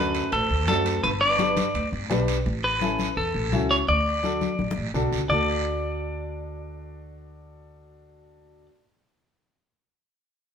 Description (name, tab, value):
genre	latin, cumbia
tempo	169 BPM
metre	4/4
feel	straight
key	D major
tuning	A4 = 445 Hz
part	clean electric guitar	melody	0.0-8.7 s	A4 to D5	-24 LUFS	left 1 dB	spring reverb
part	warm bass clarinet	second line	0.0-1.9 s	D2 to G2	-32 LUFS	right 4 dB	none
part	clear upright piano	accompaniment	0.0-8.7 s	C#4 to B4	-30 LUFS	left 2 dB	none
part	upright bass	bass	0.0-8.7 s	G1 to F#2	-29 LUFS	equal	none
part	guiro	percussion	0.1-5.4 s	none	-36 LUFS	right 6 dB	none
part	timbales	percussion	0.1-2.5 s	none	-37 LUFS	right 4 dB	none
part	congas	percussion	0.7-5.4 s	none	-30 LUFS	left 5 dB	none
room	moderate stone room reverb, RT60 1.0 s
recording	band playing live in one room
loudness	-22 LUFS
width	side -7 dB against mid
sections	0.0-5.3 A section; 5.3-8.1 B section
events	drum fill 4.6-5.3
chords	0.0 D; 1.0 G; 2.5 A; 3.9 D